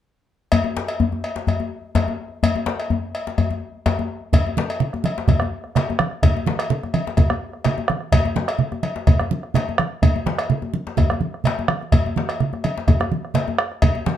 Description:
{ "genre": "west african traditional, West African drum ensemble", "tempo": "126 BPM", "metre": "4/4", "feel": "swing 53% on 16ths", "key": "none", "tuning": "none", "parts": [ { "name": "cowbell", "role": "percussion", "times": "0.5-13.9 s", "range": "none", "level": "-26 LUFS", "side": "left 2 dB", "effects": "none" }, { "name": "djembe", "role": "percussion", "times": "0.5-14.2 s", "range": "none", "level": "-23 LUFS", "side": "left 4 dB", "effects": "none" }, { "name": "bombo", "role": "percussion", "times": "4.3-13.9 s", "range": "none", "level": "-20 LUFS", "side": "right 2 dB", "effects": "none" }, { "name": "congas", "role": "percussion", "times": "4.3-14.2 s", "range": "none", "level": "-22 LUFS", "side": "right 5 dB", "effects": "none" } ], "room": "moderate studio reverb, RT60 0.6 s", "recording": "dark, warm production", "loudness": "-19 LUFS", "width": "side -10 dB against mid", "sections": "0.5-4.3 A section; 4.3-14.2 B section", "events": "none", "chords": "none", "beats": "| 0.52 0.99 1.47 1.95 | 2.42 2.90 3.37 3.85 | 4.33 4.80 5.28 5.75 | 6.23 6.70 7.18 7.66 | 8.13 8.61 9.08 9.55 | 10.03 10.50 10.98 11.45 | 11.93 12.40 12.87 13.35 | 13.82" }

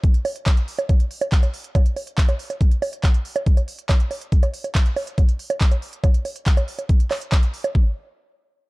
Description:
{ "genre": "trance", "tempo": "140 BPM", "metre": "4/4", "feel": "straight", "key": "none", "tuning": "none", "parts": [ { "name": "big-room dance drum kit", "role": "drums", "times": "0.0-7.7 s", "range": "bongos, handclaps, hi-hat", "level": "-26 LUFS", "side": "right 3 dB", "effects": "none" }, { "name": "electronic kick drum", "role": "drums", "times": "0.0-7.8 s", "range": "none", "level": "-16 LUFS", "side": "equal", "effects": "overdrive" } ], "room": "little or no reverb", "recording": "dark, warm production", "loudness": "-18 LUFS", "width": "side -22 dB against mid", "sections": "0.0-7.8 A section", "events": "none", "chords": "none", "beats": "0.04 0.46 | 0.89 1.32 1.75 2.18 | 2.61 3.04 3.46 3.89 | 4.32 4.75 5.18 5.61 | 6.04 6.46 6.89 7.32 | 7.75" }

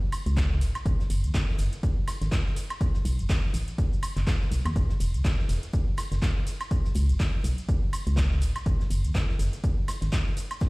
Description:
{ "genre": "piano house", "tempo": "123 BPM", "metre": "4/4", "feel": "swing 57% on 16ths", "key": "unclear", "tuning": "A4 = 440 Hz", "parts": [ { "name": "gated 80s drum kit", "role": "drums", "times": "0.1-10.7 s", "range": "hi-hat, snare drum", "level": "-44 LUFS", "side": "left 1 dB", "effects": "sidechain pumping on hats, high-pass filter on hats, small room ambience, high-pass filter on snare, high-pass filter on room" }, { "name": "house drum kit", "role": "drums", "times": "0.1-10.7 s", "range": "cabasa, handclaps, hi-hat, ride cymbal, woodblock", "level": "-36 LUFS", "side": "right 1 dB", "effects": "small room ambience" }, { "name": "organ-like FM bass", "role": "bass", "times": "0.3-10.1 s", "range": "E1 to D#2", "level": "-25 LUFS", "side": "equal", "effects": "sidechain pumping" }, { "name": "electronic kick drum", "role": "drums", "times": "0.4-10.7 s", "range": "none", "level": "-26 LUFS", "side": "equal", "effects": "small room ambience" } ], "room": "digital ambience", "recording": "played on a big sound system in a bare room, stone room reverb", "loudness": "-24 LUFS", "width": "side -25 dB against mid", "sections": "0.0-10.7 A section", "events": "none", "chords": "none", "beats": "0.37 | 0.86 1.34 1.83 2.32 | 2.81 3.29 3.78 4.27 | 4.76 5.25 5.73 6.22 | 6.71 7.20 7.68 8.17 | 8.66 9.15 9.64 10.12 | 10.61" }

